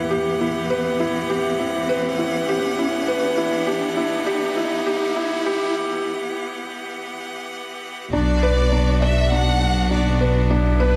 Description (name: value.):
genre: piano and strings electronica.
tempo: 101 BPM.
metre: 4/4.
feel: straight.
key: E minor.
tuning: A4 = 442 Hz.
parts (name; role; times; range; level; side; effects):
bright string quartet; sustained chords; 0.0-11.0 s; E2 to F#5; -30 LUFS; equal; none.
felt-muted upright piano; riff; 0.0-11.0 s; D4 to F#5; -24 LUFS; equal; none.
riser; sound effects; 0.0-5.8 s; none; -31 LUFS; equal; none.
warm studio violin section; melody; 8.1-11.0 s; B4 to F#5; -28 LUFS; equal; none.
rich symphonic double bass section; bass; 8.1-11.0 s; B1; -21 LUFS; equal; none.
room: moderate lush hall reverb, RT60 2.3 s.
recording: high-pass filter.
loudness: -21 LUFS.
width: mono.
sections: 0.0-8.1 A section; 8.1-11.0 B section.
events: build-up 0.0-8.1; riser 0.0-5.8; filter sweep 0.0-8.1; break 5.8-8.1; drop 8.1-11.0.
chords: 0.0 Emadd9; 8.1 Bm.